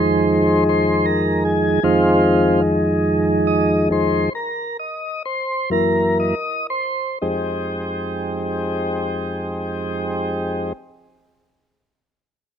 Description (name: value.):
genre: blues.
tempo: 38-52 BPM (dotted quarters).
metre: 12/8.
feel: straight.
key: F minor.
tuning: A4 = 443 Hz.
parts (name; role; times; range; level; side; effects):
tonewheel organ; sustained chords; 0.0-10.7 s; F2 to Eb5; -17 LUFS; equal; slow rotary speaker.
room: light reverb.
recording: none.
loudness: -17 LUFS.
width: side -8 dB against mid.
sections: 0.0-7.2 A section; 7.2-12.6 B section.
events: tonewheel organ solo 0.0-7.2; slowing down 0.3-7.2.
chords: 0.0 Fm7; 5.7 Gb7; 7.2 Fm7.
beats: 0.67 | 1.84 3.06 4.33 5.70 | 7.19 8.75 10.31.